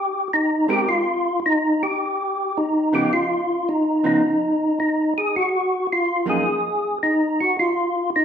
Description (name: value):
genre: jazz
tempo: 107 BPM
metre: 4/4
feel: swing 67% on 8ths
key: unclear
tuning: A4 = 439 Hz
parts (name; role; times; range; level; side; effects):
- percussive tonewheel organ; melody; 0.0-8.2 s; Eb4 to Ab4; -19 LUFS; equal; slow rotary speaker, chorus vibrato
- vintage hollow-body jazz guitar; accompaniment; 0.7-6.4 s; Gb2 to Bb4; -24 LUFS; right 2 dB; none
room: wet large studio reverb, RT60 1.3 s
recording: band playing live in one room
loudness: -18 LUFS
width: side -8 dB against mid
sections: 0.0-8.2 A section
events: none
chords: 0.0 Abmaj9; 0.9 Db9; 5.3 Gbmaj13; 7.6 N.C.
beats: 0.31 | 0.87 1.43 1.99 2.54 | 3.10 3.66 4.22 4.78 | 5.34 5.89 6.45 7.01 | 7.57 8.13